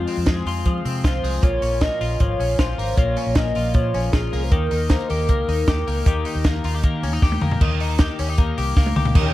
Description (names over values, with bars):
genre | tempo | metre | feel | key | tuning
jangly indie pop | 155 BPM | 4/4 | straight | unclear | A4 = 440 Hz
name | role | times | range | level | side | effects
warbly nostalgic lead | melody | 0.0-7.2 s | F4 to Eb5 | -26 LUFS | equal | chorus, analog delay
twelve-string electric guitar | arpeggios | 0.0-9.3 s | F2 to G4 | -26 LUFS | left 5 dB | analog chorus, analog delay
vintage muted fingered electric bass | bass | 0.0-9.3 s | Ab1 to F3 | -24 LUFS | equal | none
compact cocktail drum kit | drums | 0.1-9.2 s | crash cymbal, hi-hat, kick drum, snare drum, toms | -20 LUFS | equal | none
string machine, violins | sustained chords | 9.1-9.3 s | Eb3 to G4 | -24 LUFS | right 1 dB | ensemble chorus
room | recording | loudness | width
light reverb, small room reverb | vinyl crackle | -18 LUFS | side -15 dB against mid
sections
0.0-7.6 A section; 7.6-9.2 B section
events
drum fill 7.2-7.6, 8.8-9.2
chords
0.0 Fm; 1.4 Bbm; 4.5 Eb